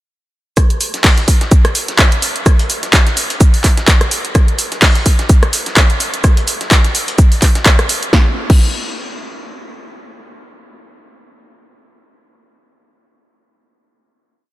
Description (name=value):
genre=house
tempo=127 BPM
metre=4/4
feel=swing 56% on 16ths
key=none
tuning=none
part: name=dusty soul sampler-style drum kit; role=drums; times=0.6-8.0 s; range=hi-hat, shaker, snare drum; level=-24 LUFS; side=right 1 dB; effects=none
part: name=electronic kick drum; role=drums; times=0.6-8.6 s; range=none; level=-10 LUFS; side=equal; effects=none
part: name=punchy analog drum machine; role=drums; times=0.6-8.6 s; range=crash cymbal, handclaps, hi-hat, rim click, snare drum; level=-15 LUFS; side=equal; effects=none
room=light reverb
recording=none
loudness=-10 LUFS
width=side -16 dB against mid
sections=0.6-8.1 drop; 8.1-11.9 final hit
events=drop 0.6-8.1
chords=none